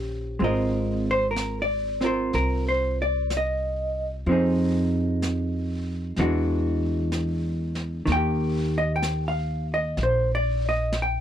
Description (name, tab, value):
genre	jazz ballad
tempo	63 BPM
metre	4/4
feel	swing 69% on 8ths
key	unclear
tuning	A4 = 440 Hz
part	hollow-body jazz guitar	accompaniment	0.0-11.2 s	Eb3 to G5	-25 LUFS	right 1 dB	none
part	upright bass	bass	0.0-11.2 s	Ab1 to F2	-26 LUFS	left 1 dB	none
part	vintage brush drum kit	drums	0.4-11.2 s	brushed snare drum, hi-hat, snare drum	-37 LUFS	equal	none
room	little or no reverb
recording	dry, close 1970s-style studio recording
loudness	-22 LUFS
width	side -10 dB against mid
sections	0.0-11.2 A section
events	none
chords	0.4 Ab69; 4.3 Fm7; 6.2 E9; 8.1 Eb